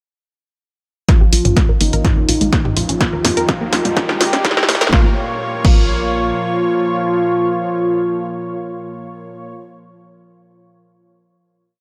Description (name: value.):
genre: melodic techno.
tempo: 125 BPM.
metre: 4/4.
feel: straight.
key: Bb dorian.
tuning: A4 = 440 Hz.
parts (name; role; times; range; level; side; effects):
fat analog lead; melody; 1.1-9.5 s; Eb4 to G4; -22 LUFS; equal; sidechain pumping.
lush unison pad; sustained chords; 1.1-9.5 s; Bb2 to Db5; -27 LUFS; equal; chorus, sidechain pumping.
unison pluck; arpeggios; 1.1-5.8 s; G3 to Bb4; -26 LUFS; equal; sidechain pumping, dub echo.
electronic kick drum; drums; 1.1-5.8 s; none; -16 LUFS; equal; studio reverb.
punchy analog drum machine; drums; 1.1-5.8 s; crash cymbal, hi-hat, snare drum, toms; -21 LUFS; equal; studio reverb.
riser; sound effects; 2.4-4.9 s; none; -31 LUFS; equal; none.
tight sequencer bass; bass; 1.2-6.3 s; Ab1 to F2; -24 LUFS; equal; sidechain pumping.
room: light reverb.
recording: high-pass filter.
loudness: -16 LUFS.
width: mono.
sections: 1.1-4.9 build; 4.9-8.8 final chord.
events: build-up 1.1-4.9; drum fill 1.1-4.9; filter sweep on synth arpeggio sound 1.1-4.9; filter sweep on analog synth lead 1.1-4.9; filter sweep 1.1-4.9.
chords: 1.1 Bbm; 3.0 Eb; 4.9 Bbm.